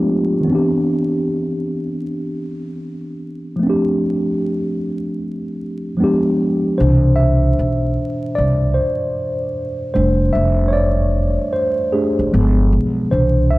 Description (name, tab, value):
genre	lo-fi hip hop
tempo	76 BPM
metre	4/4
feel	swing 64% on 16ths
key	C major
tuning	A4 = 440 Hz
part	mellow tine electric piano	accompaniment	0.0-13.6 s	B2 to E5	-17 LUFS	equal	medium stereo tremolo, cassette tape, low-pass filter
part	upright bass	bass	6.8-13.6 s	F1 to C2	-16 LUFS	equal	none
room	moderate plate reverb, RT60 3.6 s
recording	dark, warm production, vinyl crackle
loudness	-15 LUFS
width	side -19 dB against mid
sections	0.0-6.8 A section; 6.8-13.6 B section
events	filter sweep on tine electric piano 0.0-6.8; tine electric piano solo 6.8-13.6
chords	0.5 Cmaj9; 3.6 F69; 6.0 G7b9; 6.8 Cmaj9; 9.9 F69; 12.3 G7b9